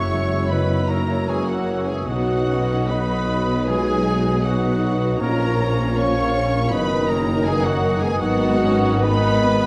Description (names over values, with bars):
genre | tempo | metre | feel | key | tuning
classical, slow romantic movement for symphony orchestra | 70-82 BPM | 4/4 | rubato | unclear | A4 = 441 Hz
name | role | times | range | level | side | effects
warm studio violin section | melody | 0.0-9.7 s | F#5 to C#6 | -32 LUFS | equal | none
dark clarinet | second line | 0.0-9.7 s | A#4 to C#5 | -36 LUFS | equal | none
mellow hollow concert flute | second line | 0.0-9.7 s | A#4 to E#5 | -31 LUFS | equal | none
warm oboe | second line | 0.0-9.7 s | C#5 to E5 | -34 LUFS | equal | none
warm studio violin section | second line | 0.0-9.7 s | F#4 to C#5 | -32 LUFS | equal | none
mellow bassoon | accompaniment | 0.0-9.7 s | D#3 to F#3 | -32 LUFS | equal | none
warm studio viola section | accompaniment | 0.0-9.7 s | F#3 to F#4 | -31 LUFS | equal | none
dark trombone section | sustained chords | 0.0-9.7 s | D#3 to E4 | -32 LUFS | equal | none
mellow French horn section | sustained chords | 0.0-9.7 s | F#3 to C#4 | -30 LUFS | equal | none
concert harp | arpeggios | 0.0-9.7 s | F#2 to D#6 | -33 LUFS | equal | none
warm trumpet | stabs | 0.0-9.7 s | F#4 to C#5 | -31 LUFS | equal | none
clear tuba | bass | 0.0-9.7 s | F#1 to B1 | -32 LUFS | equal | none
warm studio cello section | bass | 0.0-9.7 s | F#2 to B2 | -29 LUFS | equal | none
warm studio double bass section | bass | 0.0-9.7 s | F#1 to B1 | -29 LUFS | equal | none
room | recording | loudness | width
wet concert hall reverb, RT60 2.2 s | dark, warm production | -20 LUFS | mono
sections
0.0-9.7 A section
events
none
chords
0.0 F#7; 2.1 B; 5.2 A#m; 6.7 D#m/F#; 8.2 G#m7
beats
0.51 1.28 | 2.07 2.90 3.69 4.46 | 5.21 5.98 6.73 7.47 | 8.22 9.04